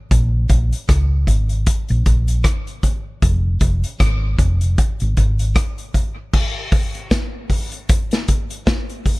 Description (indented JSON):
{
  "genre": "dub reggae",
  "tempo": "77 BPM",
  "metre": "4/4",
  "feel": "swing 57% on 16ths",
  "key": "unclear",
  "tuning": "A4 = 440 Hz",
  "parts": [
    { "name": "hollow-body short-scale fingered electric bass", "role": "bass", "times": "0.1-5.5 s", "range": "F1 to Db2", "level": "-16 LUFS", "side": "equal", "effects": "none" },
    { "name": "vintage drum kit", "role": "drums", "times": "0.1-9.2 s", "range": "crash cymbal, hi-hat, kick drum, rim click, snare drum", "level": "-17 LUFS", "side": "equal", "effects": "none" }
  ],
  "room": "little or no reverb",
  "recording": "lossy compression artefacts",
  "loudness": "-16 LUFS",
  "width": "side -23 dB against mid",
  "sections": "0.0-6.3 A section; 6.3-9.2 B section",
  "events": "none",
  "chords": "none"
}